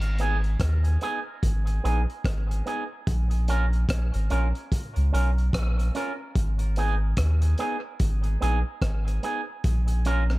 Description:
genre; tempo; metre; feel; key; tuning
dub reggae; 73 BPM; 4/4; swing 59% on 16ths; G# dorian; A4 = 440 Hz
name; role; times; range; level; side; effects
soft dub sub bass; bass; 0.0-10.4 s; G#1 to D#2; -23 LUFS; equal; none
crunchy breakbeat drum kit; drums; 0.0-10.4 s; hi-hat, kick drum, rim click; -29 LUFS; equal; none
electric guitar with an envelope filter; accompaniment; 0.2-10.2 s; B3 to A#4; -31 LUFS; right 2 dB; dub echo
room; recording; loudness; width
studio reverb; echo-heavy mix; -23 LUFS; side -19 dB against mid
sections
0.0-10.4 A section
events
none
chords
0.0 G#m; 3.1 A#m; 6.4 G#m; 9.6 A#m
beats
0.60 1.43 2.25 | 3.07 3.89 4.71 5.54 | 6.36 7.18 8.00 8.82 | 9.65

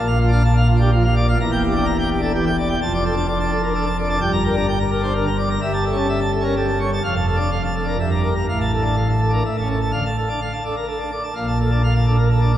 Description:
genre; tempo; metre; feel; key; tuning
classical, organ toccata; 127 BPM; 3/4; straight; D minor; A4 = 439 Hz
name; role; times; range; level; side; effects
pipe organ, plenum; solo; 0.0-12.6 s; E1 to Bb5; -17 LUFS; equal; none
room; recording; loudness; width
wet church reverb, RT60 3.2 s; heard from further back in the room; -17 LUFS; side -11 dB against mid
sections
0.0-9.9 A section; 9.9-12.6 A section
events
none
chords
0.0 Bbmaj7; 1.4 Em7b5; 2.8 Dm/F; 4.2 Gm; 5.6 A7/G; 7.0 Dm/F; 8.0 Em7b5/G; 8.5 Dm/A; 9.4 A; 9.9 Dm; 11.4 Bbmaj7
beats
0.44 0.92 | 1.39 1.87 2.34 | 2.81 3.28 3.75 | 4.21 4.68 5.15 | 5.62 6.09 6.56 | 7.03 7.50 7.98 | 8.47 8.96 9.45 | 9.93 10.41 10.89 | 11.36 11.84 12.30

